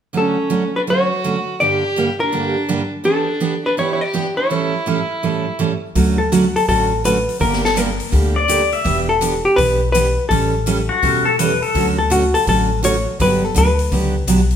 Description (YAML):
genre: country, western swing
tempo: 166 BPM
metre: 4/4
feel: swing 64% on 8ths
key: D major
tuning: A4 = 440 Hz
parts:
  - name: picked steel-string acoustic guitar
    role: accompaniment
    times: 0.1-14.4 s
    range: G2 to A4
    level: -20 LUFS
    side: right 4 dB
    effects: none
  - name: hollow-body jazz guitar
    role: melody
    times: 0.2-14.3 s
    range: F#4 to D5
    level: -18 LUFS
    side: left 2 dB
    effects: none
  - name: rich fiddle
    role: second line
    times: 0.2-5.5 s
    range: C#4 to G4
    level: -23 LUFS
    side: right 2 dB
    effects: none
  - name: upright bass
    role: bass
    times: 6.0-14.6 s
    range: E1 to D2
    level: -20 LUFS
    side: left 1 dB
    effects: none
  - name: swinging big-band drum kit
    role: drums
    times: 6.0-14.6 s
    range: hi-hat, kick drum, snare drum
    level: -24 LUFS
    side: left 2 dB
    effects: none
  - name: pedal steel guitar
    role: second line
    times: 8.4-11.9 s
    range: F#4 to E5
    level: -17 LUFS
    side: left 4 dB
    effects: none
room: wet large studio reverb, RT60 1.0 s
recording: band playing live in one room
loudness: -15 LUFS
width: side -8 dB against mid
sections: 0.1-6.0 A section; 6.0-14.6 B section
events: none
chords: 0.1 Dmaj7; 1.6 Gm; 3.1 Em7; 4.5 A7; 6.0 Dmaj7; 7.4 Gm; 8.9 Em7; 10.3 A7; 11.7 Dmaj7; 13.2 Gmaj7